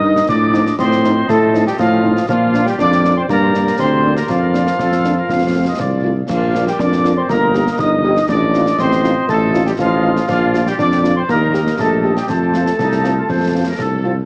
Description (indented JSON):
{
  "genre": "military-style march for wind band",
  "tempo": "120 BPM",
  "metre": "2/4",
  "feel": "straight",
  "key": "unclear",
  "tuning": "A4 = 440 Hz",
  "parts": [
    { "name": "mellow trumpet section", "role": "melody", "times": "0.0-14.1 s", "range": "F4 to Eb5", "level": "-24 LUFS", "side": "equal", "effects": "tape echo" },
    { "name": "bright wooden piccolo", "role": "second line", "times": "0.0-14.0 s", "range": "F5 to Eb6", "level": "-24 LUFS", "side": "equal", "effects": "tape echo" },
    { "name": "warm euphonium", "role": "second line", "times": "0.0-14.0 s", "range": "F3 to Eb4", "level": "-23 LUFS", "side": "equal", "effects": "none" },
    { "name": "warm woodwind section", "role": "second line", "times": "0.0-14.2 s", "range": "Eb4 to F5", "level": "-28 LUFS", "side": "equal", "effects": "none" },
    { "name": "mellow French horn section", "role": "accompaniment", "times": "0.0-14.1 s", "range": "F3 to G4", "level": "-26 LUFS", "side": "equal", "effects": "none" },
    { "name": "mellow tuba", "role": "bass", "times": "0.0-14.2 s", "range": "G1 to Bb2", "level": "-19 LUFS", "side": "equal", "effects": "none" },
    { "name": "concert snare drum, concert bass drum and clash cymbals", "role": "drums", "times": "0.2-14.0 s", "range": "none", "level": "-27 LUFS", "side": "equal", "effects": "tape echo" }
  ],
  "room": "light reverb, studio ambience",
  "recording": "echo-heavy mix, cassette tape, small speaker sound",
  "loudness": "-15 LUFS",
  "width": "mono",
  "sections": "0.0-14.3 A section",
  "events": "none",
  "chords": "0.3 F7/A; 2.3 Bb; 3.3 Gm; 4.3 Bb/F; 5.3 F; 6.3 Bb; 7.3 Eb/G; 8.3 F7/A; 10.3 Bb; 11.3 Eb; 12.3 F"
}